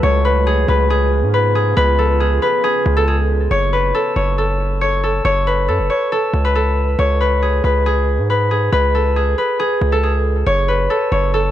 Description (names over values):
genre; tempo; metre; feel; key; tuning
hip hop, trap; 138 BPM; 4/4; half-time; F# harmonic minor; A4 = 440 Hz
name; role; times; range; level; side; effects
concert harp; melody; 0.0-11.5 s; G#4 to C#5; -16 LUFS; left 1 dB; low-pass filter, analog delay
deep dark ambient pad; sustained chords; 0.0-3.5 s; C#3 to E#4; -28 LUFS; equal; chorus, built-in reverb
distorted 808-style bass; bass; 0.0-11.5 s; F#1 to G#2; -17 LUFS; equal; distortion
room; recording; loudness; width
little or no reverb; dry, gritty hardware recording; -14 LUFS; side -12 dB against mid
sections
0.0-3.5 A section; 3.5-10.5 B section; 10.5-11.5 C section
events
none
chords
0.0 C#7; 3.5 F#m; 7.0 C#5; 10.5 F#m